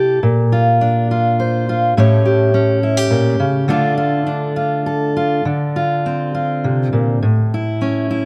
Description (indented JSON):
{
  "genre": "folk, solo fingerstyle acoustic guitar",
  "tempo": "103 BPM",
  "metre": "3/4",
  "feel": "straight",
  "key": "D minor",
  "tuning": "A4 = 438 Hz",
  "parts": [
    { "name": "fingerpicked steel-string acoustic guitar", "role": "solo", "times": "0.0-8.3 s", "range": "A2 to C#5", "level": "-16 LUFS", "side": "equal", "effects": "none" }
  ],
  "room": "moderate concert hall reverb, RT60 1.8 s",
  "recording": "none",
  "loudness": "-16 LUFS",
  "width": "mono",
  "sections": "0.0-5.5 A section; 5.5-8.3 A section",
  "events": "none",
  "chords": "0.2 Bb; 2.0 A7; 3.7 Dm; 5.5 Dm7; 7.2 A",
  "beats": "| 0.21 0.80 1.37 | 1.95 2.54 3.12 | 3.69 4.27 4.87 | 5.46 6.05 6.65 | 7.23 7.82"
}